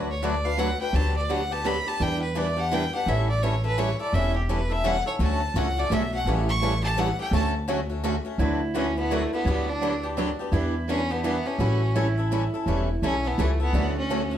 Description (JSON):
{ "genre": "acoustic string swing (jazz manouche)", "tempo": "169 BPM", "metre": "3/4", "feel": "swing 61% on 8ths", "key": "D major", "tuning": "A4 = 440 Hz", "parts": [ { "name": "picked steel-string acoustic guitar", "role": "accompaniment", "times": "0.0-14.2 s", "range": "D3 to B4", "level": "-30 LUFS", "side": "right 4 dB", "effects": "none" }, { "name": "picked swing-style acoustic guitar", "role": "accompaniment", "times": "0.0-14.4 s", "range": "C#3 to B4", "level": "-31 LUFS", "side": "left 5 dB", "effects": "none" }, { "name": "upright bass", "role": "bass", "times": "0.0-14.4 s", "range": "E1 to E2", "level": "-26 LUFS", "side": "equal", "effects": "none" }, { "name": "bright violin", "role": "melody", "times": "0.1-14.3 s", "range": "A3 to C#6", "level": "-28 LUFS", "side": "equal", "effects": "plate reverb" }, { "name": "picked steel-string acoustic guitar", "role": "second line", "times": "8.4-14.4 s", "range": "D4 to F#4", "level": "-31 LUFS", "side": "right 2 dB", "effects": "none" } ], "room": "wet studio reverb, RT60 0.6 s", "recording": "heard from further back in the room", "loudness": "-22 LUFS", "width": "side -10 dB against mid", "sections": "0.0-8.4 A section; 8.4-14.4 B section", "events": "violin solo 0.0-8.4", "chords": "0.0 D6; 0.9 Gmaj7/D; 2.0 Em7; 3.1 A7; 5.2 Dmaj7; 6.3 A7; 7.3 Dmaj7; 8.4 D6; 9.5 Gmaj7/D; 10.5 Em7; 11.6 A7; 13.7 Dmaj7", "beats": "0.23 0.58 | 0.94 1.29 1.65 | 2.00 2.36 2.71 | 3.07 3.42 3.78 | 4.13 4.49 4.84 | 5.20 5.55 5.91 | 6.26 6.62 6.97 | 7.33 7.68 8.04 | 8.39 8.75 9.10 | 9.46 9.82 10.17 | 10.53 10.89 11.24 | 11.60 11.96 12.31 | 12.67 13.03 13.38 | 13.74 14.10" }